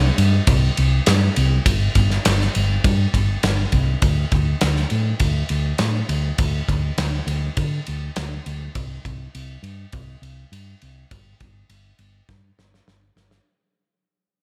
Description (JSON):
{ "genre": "rock, shoegaze and dream pop", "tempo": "101 BPM", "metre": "4/4", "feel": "straight", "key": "unclear", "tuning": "A4 = 440 Hz", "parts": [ { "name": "hollow-body short-scale fingered electric bass", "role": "bass", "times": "0.0-13.4 s", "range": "G1 to D3", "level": "-22 LUFS", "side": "equal", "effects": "none" }, { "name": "loose indie drum kit", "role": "drums", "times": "0.2-13.5 s", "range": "kick drum, ride cymbal, snare drum", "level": "-24 LUFS", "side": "equal", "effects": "none" } ], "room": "light reverb", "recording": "none", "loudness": "-20 LUFS", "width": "mono", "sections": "0.0-13.5 A section", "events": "fade-out 0.0-13.5; drum fill 12.3-13.5", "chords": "none" }